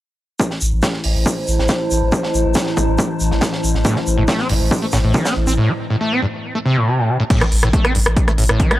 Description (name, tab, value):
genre	driving peak-time techno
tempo	139 BPM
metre	4/4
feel	straight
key	A minor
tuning	A4 = 440 Hz
part	metallic inharmonic drone	drone	0.8-8.8 s	A2 to E3	-29 LUFS	left 2 dB	chorus, built-in reverb, sidechain pumping
part	deep reggae drum kit	drums	0.4-5.6 s	hi-hat, shaker, snare drum	-24 LUFS	right 1 dB	sidechain pumping on hats, high-pass filter on hats, high-pass filter on snare, sidechain pumping on perc, high-pass filter on perc, high-pass filter on room
part	electronic kick drum	drums	0.4-8.7 s	none	-18 LUFS	equal	high-pass filter on kick, high-pass filter on room
part	warbly tape-like pad	texture	1.0-5.6 s	E4 to A5	-24 LUFS	right 1 dB	chorus, built-in reverb, phaser, sidechain pumping
part	saturated sub bass	bass	0.6-8.6 s	A1	-18 LUFS	equal	overdrive, sidechain pumping, low-pass filter
part	screaming distorted acid line	riff	3.8-8.8 s	G2 to C4	-18 LUFS	equal	distortion, lush chorus, sidechain pumping, tape echo
part	techno drum kit	drums	7.3-8.8 s	crash cymbal, hi-hat, rim click	-20 LUFS	equal	none
room	little or no reverb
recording	dry, gritty hardware recording, transformer saturation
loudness	-15 LUFS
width	side -15 dB against mid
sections	0.4-7.3 A section; 7.3-8.8 B section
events	none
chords	0.4 Am; 7.3 A5